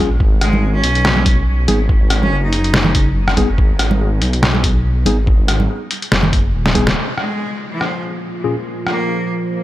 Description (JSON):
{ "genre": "deep dubstep", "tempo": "142 BPM", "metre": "4/4", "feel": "swing 55% on 16ths, half-time", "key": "unclear", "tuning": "A4 = 441 Hz", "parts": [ { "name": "mellow tine electric piano", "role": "stabs", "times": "0.0-8.5 s", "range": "Bb2 to Ab4", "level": "-25 LUFS", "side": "left 3 dB", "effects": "medium stereo tremolo, low-pass filter, dub echo" }, { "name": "dark detuned saw bass", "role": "bass", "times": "0.0-6.9 s", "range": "Eb1 to Cb2", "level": "-16 LUFS", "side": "equal", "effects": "none" }, { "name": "electronic kick drum", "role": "drums", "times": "0.2-6.8 s", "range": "none", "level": "-15 LUFS", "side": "equal", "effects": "none" }, { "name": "bright cello", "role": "melody", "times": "0.4-3.0, 7.2-9.3 s", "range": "F3 to Eb4", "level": "-23 LUFS", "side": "equal", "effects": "dub echo" }, { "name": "trip hop sampler-style drum kit", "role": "drums", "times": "0.4-9.0 s", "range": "hi-hat, rim click, snare drum", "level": "-19 LUFS", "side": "equal", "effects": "low-pass filter on snare, low-pass filter on hats, low-pass filter on room" }, { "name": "congas", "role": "percussion", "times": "0.5-6.8 s", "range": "none", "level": "-22 LUFS", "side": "right 3 dB", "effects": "dub echo" }, { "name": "overtone-sweeping drone", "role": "sustained chords", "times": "7.7-9.6 s", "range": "Bb2 to F3", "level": "-24 LUFS", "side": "right 2 dB", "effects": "chorus, built-in reverb, vintage 12-bit sampler grit" } ], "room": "little or no reverb", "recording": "none", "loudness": "-13 LUFS", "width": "side -14 dB against mid", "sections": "0.0-7.0 A section; 7.0-9.6 B section", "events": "drum fill 6.6-7.0; band accent 6.9; filter sweep on tine electric piano 7.0-9.6", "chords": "0.2 Abm; 7.0 Bb5" }